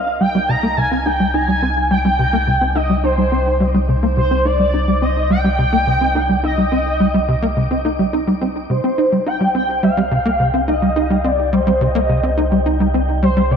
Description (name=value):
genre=ambient, sequencer-driven space music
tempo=106 BPM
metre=4/4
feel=straight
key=C minor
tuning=A4 = 440 Hz
part: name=expressive portamento lead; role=melody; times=0.0-13.6 s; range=C5 to Bb5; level=-19 LUFS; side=equal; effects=ensemble chorus, analog delay
part: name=warm sub bass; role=bass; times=0.0-13.6 s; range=C2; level=-21 LUFS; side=equal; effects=none
part: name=wind-like tuned noise texture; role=texture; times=0.0-13.6 s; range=Eb4 to D6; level=-32 LUFS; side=right 4 dB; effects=built-in reverb
part: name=tight sequencer bass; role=riff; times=0.2-13.6 s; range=C3 to Eb4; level=-18 LUFS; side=equal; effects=ensemble chorus, analog delay
room=wet spring reverb, RT60 2.8 s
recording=echo-heavy mix, cassette tape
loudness=-14 LUFS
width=side -7 dB against mid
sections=0.0-13.6 A section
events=fade-in on synth texture 0.0-13.6; filter sweep on analog synth bass 0.0-13.6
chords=0.0 Cm